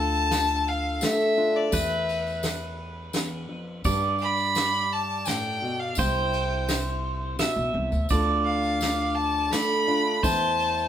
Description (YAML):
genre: acoustic folk duo or small band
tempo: 85 BPM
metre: 3/4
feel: straight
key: D dorian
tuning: A4 = 438 Hz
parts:
  - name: clear fiddle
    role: melody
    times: 0.0-10.9 s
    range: D5 to B5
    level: -26 LUFS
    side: left 2 dB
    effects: none
  - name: pedal steel guitar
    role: second line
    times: 0.0-10.9 s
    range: A4 to E5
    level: -30 LUFS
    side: right 4 dB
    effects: none
  - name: fingerpicked steel-string acoustic guitar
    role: accompaniment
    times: 0.0-10.9 s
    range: E2 to G4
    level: -30 LUFS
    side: left 1 dB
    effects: none
  - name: upright bass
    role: bass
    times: 0.0-10.9 s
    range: B1 to G2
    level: -30 LUFS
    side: equal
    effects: none
  - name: tambourine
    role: percussion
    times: 0.1-10.9 s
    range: none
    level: -36 LUFS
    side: left 3 dB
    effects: none
  - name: vintage brush drum kit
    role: drums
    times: 0.3-10.8 s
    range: kick drum, ride cymbal, snare drum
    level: -32 LUFS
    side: equal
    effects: none
room: moderate studio reverb, RT60 0.5 s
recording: band playing live in one room, faint mains hum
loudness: -23 LUFS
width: side -10 dB against mid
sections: 0.0-10.9 A section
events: none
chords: 0.0 Dm; 1.7 Em; 3.9 Gadd9; 6.0 C; 8.1 Dm; 10.2 C/E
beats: 0.32 1.02 | 1.73 2.44 3.15 | 3.86 4.56 5.27 | 5.98 6.69 7.40 | 8.11 8.81 9.52 | 10.23